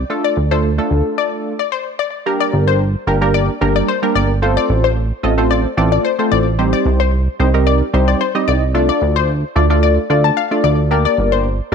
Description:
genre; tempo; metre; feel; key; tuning
dance-pop; 111 BPM; 4/4; straight; G minor; A4 = 439 Hz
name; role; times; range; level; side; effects
chorused synth bass; bass; 0.0-11.7 s; G1 to D2; -16 LUFS; right 1 dB; none
funky polysynth comp; accompaniment; 0.1-11.7 s; G3 to Eb5; -17 LUFS; right 1 dB; chorus
wide unison pluck; melody; 0.2-11.7 s; C5 to A5; -20 LUFS; left 12 dB; wide subtle chorus, slapback echo
room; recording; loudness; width
light reverb; none; -13 LUFS; side -6 dB against mid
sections
0.0-2.3 A section; 2.3-11.7 B section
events
break 1.2-2.3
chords
0.1 Dm; 2.3 Gm; 4.4 F; 6.6 Cm; 8.7 Dm; 10.9 Gm

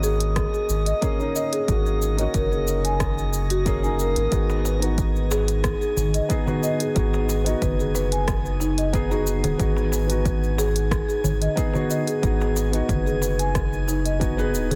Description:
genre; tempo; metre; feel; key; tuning
organic downtempo; 91 BPM; 4/4; straight; G# minor; A4 = 441 Hz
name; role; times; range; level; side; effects
felt-muted upright piano; accompaniment; 0.0-14.8 s; A#3 to B4; -31 LUFS; equal; sidechain pumping, delay, shimmer reverb
marimba with soft mallets; arpeggios; 0.0-14.8 s; D#4 to G#5; -29 LUFS; equal; delay, shimmer reverb
round analog bass; bass; 0.0-14.8 s; D#1 to G#1; -27 LUFS; equal; none
deep house drum kit; drums; 0.0-14.8 s; cabasa, hi-hat, rim click; -33 LUFS; equal; soft clipping on snare
drifting glass-harmonics texture; texture; 0.0-14.8 s; D#5 to G#5; -39 LUFS; equal; chorus, built-in reverb, shimmer reverb
electronic kick drum; drums; 0.4-14.3 s; none; -28 LUFS; equal; none
darbuka; percussion; 4.5-14.8 s; none; -33 LUFS; equal; none
room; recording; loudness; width
light reverb; dense, heavily limited modern master; -23 LUFS; mono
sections
0.0-14.8 A section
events
none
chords
0.0 F#/G#; 4.3 G#m7

